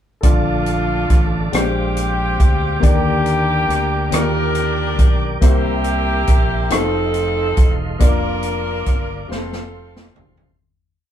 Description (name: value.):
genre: slow gospel.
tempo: 46 BPM (dotted quarters).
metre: 6/8.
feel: straight.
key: Bb major.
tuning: A4 = 441 Hz.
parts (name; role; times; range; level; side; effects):
clear saxophone section; melody; 0.2-10.6 s; A3 to Bb4; -22 LUFS; equal; none.
warm grand piano; accompaniment; 0.2-10.6 s; Bb2 to D5; -24 LUFS; left 4 dB; none.
tonewheel organ; sustained chords; 0.2-10.6 s; A4 to D6; -28 LUFS; right 3 dB; chorus vibrato, stopped rotary speaker.
fingered electric bass; bass; 0.2-10.5 s; E1 to Eb2; -22 LUFS; right 1 dB; none.
swinging big-band drum kit; drums; 0.2-10.6 s; hi-hat, kick drum, rim click, snare drum, toms; -16 LUFS; equal; none.
room: light reverb.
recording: band playing live in one room.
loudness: -15 LUFS.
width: side -10 dB against mid.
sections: 0.2-10.6 verse.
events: fade-out 8.0-10.6; drum fill 9.3-10.6.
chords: 0.2 Bbmaj7; 1.5 Bb13; 2.8 Ebmaj7; 5.4 C7; 6.7 F7; 8.0 Bb/F; 9.3 F.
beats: | 0.24 1.53 | 2.83 4.13 | 5.42 6.71 | 8.01 9.30.